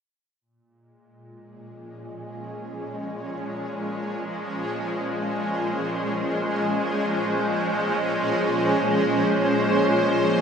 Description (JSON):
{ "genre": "ambient", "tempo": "free time", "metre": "none", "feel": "none", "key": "Bb minor", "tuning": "A4 = 439 Hz", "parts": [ { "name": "shimmering ambient pad", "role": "sustained chords", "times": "1.6-10.4 s", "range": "Bb2 to C5", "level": "-22 LUFS", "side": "equal", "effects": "chorus, built-in reverb" } ], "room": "wet spring reverb, RT60 2.5 s", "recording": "none", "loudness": "-22 LUFS", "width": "side -7 dB against mid", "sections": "0.4-10.4 A section", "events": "fade-in on ambient pad 0.4-10.4", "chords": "0.4 Bbm7" }